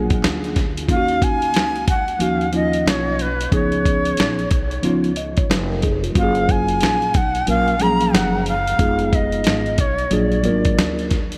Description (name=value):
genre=hip hop, jazz-hop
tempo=91 BPM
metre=4/4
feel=swing 62% on 16ths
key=Eb minor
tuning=A4 = 443 Hz
part: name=mellow tine electric piano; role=accompaniment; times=0.0-11.2 s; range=F3 to Eb5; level=-24 LUFS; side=equal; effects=none
part: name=upright bass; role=bass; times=0.0-11.4 s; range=F1 to Eb2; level=-28 LUFS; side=equal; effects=none
part: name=dusty soul sampler-style drum kit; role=drums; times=0.1-11.4 s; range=hi-hat, kick drum, snare drum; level=-23 LUFS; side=equal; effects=none
part: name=breathy bright shakuhachi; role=melody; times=0.9-11.1 s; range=Cb5 to Bb5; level=-24 LUFS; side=equal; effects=tape echo
room=moderate huge ambient reverb, RT60 4.3 s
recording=dreamy mix soaked in reverb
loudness=-19 LUFS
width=mono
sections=0.9-11.4 A section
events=none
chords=0.0 Bb7b13; 0.9 Ebm9; 3.5 Db7; 6.2 Gbmaj7; 8.8 Fm7b5; 10.1 Bb7b13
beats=0.23 | 0.89 1.54 2.20 2.86 | 3.52 4.18 4.84 5.50 | 6.16 6.82 7.48 8.14 | 8.80 9.46 10.12 10.78